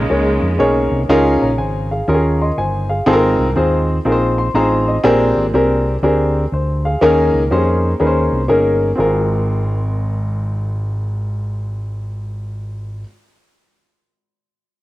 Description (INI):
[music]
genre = uptempo gospel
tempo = 122 BPM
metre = 4/4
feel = swing 66% on 8ths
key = Ab major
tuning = A4 = 440 Hz
[part]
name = clear studio string section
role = melody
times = 0.0-0.9 s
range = Db3 to Ab3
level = -22 LUFS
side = equal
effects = cassette tape, analog delay
[part]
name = warm upright piano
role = accompaniment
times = 0.0-13.0 s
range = Ab1 to C6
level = -15 LUFS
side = equal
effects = none
[part]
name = fingered electric bass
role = bass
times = 0.0-13.0 s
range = G1 to F2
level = -19 LUFS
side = equal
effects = none
[sound]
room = light reverb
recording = home recording on cassette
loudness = -14 LUFS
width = side -16 dB against mid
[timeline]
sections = 0.0-1.1 A section; 1.1-9.0 B section; 9.0-12.9 C section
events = upright piano fill 4.1-5.0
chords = 0.0 Eb7sus4; 1.1 Db69; 2.1 Eb9sus4; 3.1 Ab69; 5.0 Bb13; 7.0 Eb7sus4; 9.0 Ab69